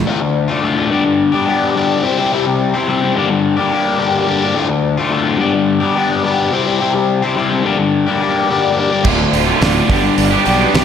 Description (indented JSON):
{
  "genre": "classic rock",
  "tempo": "107 BPM",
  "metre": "4/4",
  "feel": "straight",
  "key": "unclear",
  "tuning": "A4 = 439 Hz",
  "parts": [
    { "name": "cranked stack guitar", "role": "riff", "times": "0.0, 9.0-10.8 s", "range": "D2 to G4", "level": "-16 LUFS", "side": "right 12 dB", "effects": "overdrive, spring reverb, slapback echo" },
    { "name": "crunchy overdriven guitar", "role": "riff", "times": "0.0-10.8 s", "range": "D2 to C5", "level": "-13 LUFS", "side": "left 4 dB", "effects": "phaser" },
    { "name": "damped 70s drum kit", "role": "drums", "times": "9.0-10.8 s", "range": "crash cymbal, hi-hat, kick drum, snare drum", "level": "-19 LUFS", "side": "right 1 dB", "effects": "none" },
    { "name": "fuzz fingered electric bass", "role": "bass", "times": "9.1-10.8 s", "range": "D1 to B1", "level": "-19 LUFS", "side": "right 2 dB", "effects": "overdrive" }
  ],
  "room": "moderate lush hall reverb, RT60 1.8 s, studio reverb",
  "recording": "big arena sound",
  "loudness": "-12 LUFS",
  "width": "side -8 dB against mid",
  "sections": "0.1-10.8 A section",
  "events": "none",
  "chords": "0.1 Dm; 0.9 G; 2.0 C; 3.2 Gm; 4.6 Dm; 5.4 G; 6.5 C; 7.7 Gm; 9.1 Dm; 9.9 G",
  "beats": "| 0.06 0.62 1.19 1.75 | 2.31 2.87 3.44 4.00 | 4.56 5.12 5.68 6.25 | 6.81 7.37 7.93 8.50 | 9.06 9.62 10.18 10.75"
}